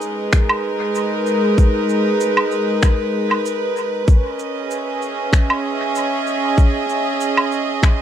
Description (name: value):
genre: ambient dub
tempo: 96 BPM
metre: 4/4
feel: swing 54% on 16ths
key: G# minor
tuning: A4 = 440 Hz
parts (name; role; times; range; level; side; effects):
- rich chamber string section; sustained chords; 0.0-8.0 s; G#3 to E5; -18 LUFS; right 1 dB; none
- electronic shaker, finger snaps and woodblock; drums; 0.0-8.0 s; none; -21 LUFS; right 1 dB; dub echo
- electronic kick drum; drums; 0.3-8.0 s; none; -13 LUFS; equal; none
room: light reverb, digital ambience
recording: dark, warm production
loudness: -16 LUFS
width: side -10 dB against mid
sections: 0.0-8.0 A section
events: none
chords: 0.0 G#madd9; 4.1 C#m7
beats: 0.33 0.95 | 1.58 2.20 2.83 3.45 | 4.08 4.70 5.33 5.95 | 6.58 7.20 7.83